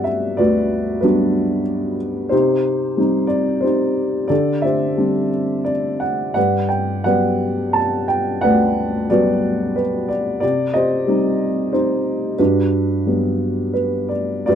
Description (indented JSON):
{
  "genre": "classical, lyrical solo piano",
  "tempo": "84-94 BPM",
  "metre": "3/4",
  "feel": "rubato",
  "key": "G major",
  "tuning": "A4 = 441 Hz",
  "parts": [
    { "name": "dark upright piano", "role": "solo", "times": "0.0-14.6 s", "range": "D2 to A5", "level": "-16 LUFS", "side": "equal", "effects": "none" }
  ],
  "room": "moderate studio ambience, RT60 0.5 s",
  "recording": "dark, warm production",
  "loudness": "-16 LUFS",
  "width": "side -8 dB against mid",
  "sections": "0.0-14.5 A section",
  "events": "none",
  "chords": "0.0 Gmaj7; 2.3 Cm; 4.3 D7sus4; 6.4 Gmaj7; 10.4 Cm; 12.4 Gmaj7"
}